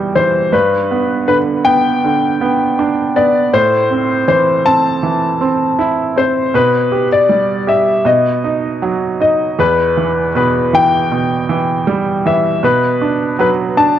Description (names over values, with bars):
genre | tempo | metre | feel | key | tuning
pop | 79 BPM | 4/4 | straight | E minor | A4 = 440 Hz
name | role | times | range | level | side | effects
clear grand piano | melody | 0.0-14.0 s | B4 to A5 | -14 LUFS | left 4 dB | cassette tape
bright upright piano | accompaniment | 0.0-14.0 s | E2 to G4 | -15 LUFS | right 6 dB | cassette tape
room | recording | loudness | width
moderate spring reverb, RT60 2.1 s | home recording on cassette | -12 LUFS | side -10 dB against mid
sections
0.0-14.0 A section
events
none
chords
0.0 Em; 0.5 G; 3.5 Am; 6.5 G6/B; 8.1 B; 9.6 Em; 12.6 Bm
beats
| 0.53 1.28 2.04 2.79 | 3.53 4.28 5.03 5.79 | 6.54 7.29 8.05 8.82 | 9.59 10.35 11.11 11.87 | 12.63 13.39